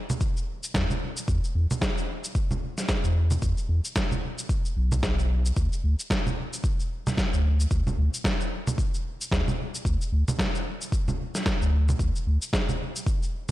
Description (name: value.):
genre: organic downtempo.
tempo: 112 BPM.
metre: 4/4.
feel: swing 59% on 16ths.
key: unclear.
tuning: A4 = 441 Hz.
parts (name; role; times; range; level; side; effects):
electronic congas, cabasa and snare drum; drums; 0.1-13.5 s; none; -29 LUFS; equal; none.
electronic kick drum; drums; 0.2-13.2 s; none; -28 LUFS; equal; overdrive.
warm sub bass; bass; 0.7-12.4 s; B1 to E2; -23 LUFS; equal; tube saturation, sidechain pumping.
room: little or no reverb.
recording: blown-out, overdriven recording, overdrive.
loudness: -24 LUFS.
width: side -16 dB against mid.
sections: 0.0-13.5 A section.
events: none.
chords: none.